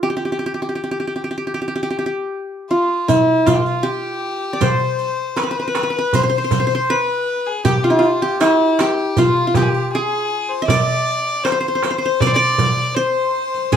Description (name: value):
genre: Turkish makam ensemble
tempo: 79 BPM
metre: 4/4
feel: straight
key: G makam hicaz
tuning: A4 = 440 Hz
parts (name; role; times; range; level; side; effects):
- qanun; melody; 0.0-13.8 s; E4-40c to E5-40c; -18 LUFS; equal; none
- clear violin; second line; 2.7-13.8 s; E4-45c to D5; -22 LUFS; left 4 dB; none
- darbuka; percussion; 3.1-13.8 s; none; -21 LUFS; right 1 dB; none
- riq; percussion; 3.1-13.8 s; none; -27 LUFS; right 6 dB; none
room: wet studio reverb, RT60 0.5 s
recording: heard from further back in the room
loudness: -16 LUFS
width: side -8 dB against mid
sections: 0.0-3.1 A section; 3.1-13.8 B section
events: none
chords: none